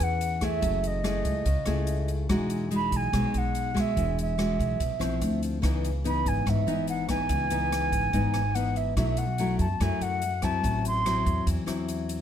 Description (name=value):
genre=bossa nova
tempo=144 BPM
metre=4/4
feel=straight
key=E major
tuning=A4 = 438 Hz
part: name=mellow silver concert flute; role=melody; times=0.0-11.4 s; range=D#5 to C6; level=-30 LUFS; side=right 3 dB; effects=none
part: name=nylon-string guitar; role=accompaniment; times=0.0-12.2 s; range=F#2 to B4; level=-29 LUFS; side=left 3 dB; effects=none
part: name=upright bass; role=bass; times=0.0-12.2 s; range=E1 to F#2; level=-30 LUFS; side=right 1 dB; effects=none
part: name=swinging big-band drum kit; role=drums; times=0.0-12.2 s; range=hi-hat, kick drum, rim click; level=-34 LUFS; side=equal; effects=none
room=little or no reverb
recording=close, detailed microphones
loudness=-24 LUFS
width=side -9 dB against mid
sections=0.0-12.2 A section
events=none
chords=0.0 Amaj9; 0.6 F#m9; 2.3 Emaj9; 5.2 Dm9; 5.6 C#m9; 9.0 B7sus4; 10.6 Am6